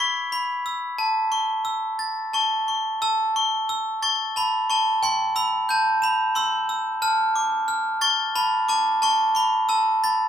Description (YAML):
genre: children's music, lullaby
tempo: 90 BPM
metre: 3/4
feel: straight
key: A major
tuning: A4 = 440 Hz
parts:
  - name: glockenspiel with brass mallets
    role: solo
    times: 0.0-10.3 s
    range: G5 to E7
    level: -20 LUFS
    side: equal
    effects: none
room: moderate studio reverb, RT60 0.7 s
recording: band playing live in one room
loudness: -20 LUFS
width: side -9 dB against mid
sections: 0.0-3.0 A section; 3.0-10.3 B section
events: none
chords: 0.0 E; 1.0 A; 5.0 C; 7.0 Dm; 9.0 A